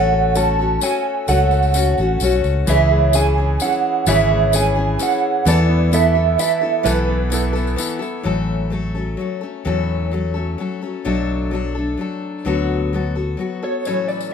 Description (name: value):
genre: acoustic folk duo or small band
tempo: 129 BPM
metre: 3/4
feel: straight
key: unclear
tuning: A4 = 440 Hz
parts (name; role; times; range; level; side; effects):
- electric guitar through a small old amp; melody; 0.0-7.7, 13.6-14.3 s; B4 to A5; -19 LUFS; right 8 dB; tremolo
- picked steel-string acoustic guitar; accompaniment; 0.0-14.3 s; A2 to A4; -22 LUFS; left 6 dB; none
- clear upright piano; arpeggios; 0.0-8.3 s; E3 to A4; -24 LUFS; right 2 dB; none
- fingered electric bass; bass; 0.0-13.3 s; G#1 to E2; -19 LUFS; equal; none
- tambourine; percussion; 0.4-8.1, 13.9-14.3 s; none; -28 LUFS; left 8 dB; none
room: moderate studio reverb, RT60 0.7 s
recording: minimal, uncompressed stereo recording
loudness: -16 LUFS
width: side -7 dB against mid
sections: 0.0-8.3 A section; 8.3-13.9 B section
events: none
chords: 0.0 F#m/A; 2.7 C#m; 5.5 Esus4; 8.3 A6; 11.1 Bm7; 12.5 D6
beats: 0.35 0.82 | 1.28 1.75 2.21 | 2.68 3.14 3.60 | 4.07 4.53 5.00 | 5.46 5.93 6.39 | 6.86 7.32 7.79 | 8.25 8.72 9.18 | 9.65 10.12 10.58 | 11.05 11.52 11.98 | 12.45 12.92 13.38 | 13.85 14.32